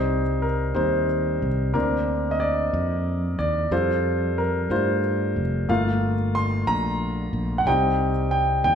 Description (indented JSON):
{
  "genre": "six-eight pop ballad",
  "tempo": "61 BPM (dotted quarters)",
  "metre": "6/8",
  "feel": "straight",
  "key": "unclear",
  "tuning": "A4 = 445 Hz",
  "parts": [
    { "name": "clear concert grand piano", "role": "accompaniment", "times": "0.0-8.8 s", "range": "G3 to C6", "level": "-22 LUFS", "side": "equal", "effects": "none" },
    { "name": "sustaining fretless electric bass", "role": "bass", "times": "0.0-8.8 s", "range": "F1 to G2", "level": "-25 LUFS", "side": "equal", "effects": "none" }
  ],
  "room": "wet large studio reverb, RT60 1.2 s",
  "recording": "band playing live in one room",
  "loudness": "-21 LUFS",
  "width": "side -8 dB against mid",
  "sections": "0.0-8.8 A section",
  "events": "grand piano solo 0.0-8.8",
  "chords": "0.0 Cm; 1.7 Bbadd9/D; 3.7 Fadd9; 5.7 Gm7; 7.7 Cm"
}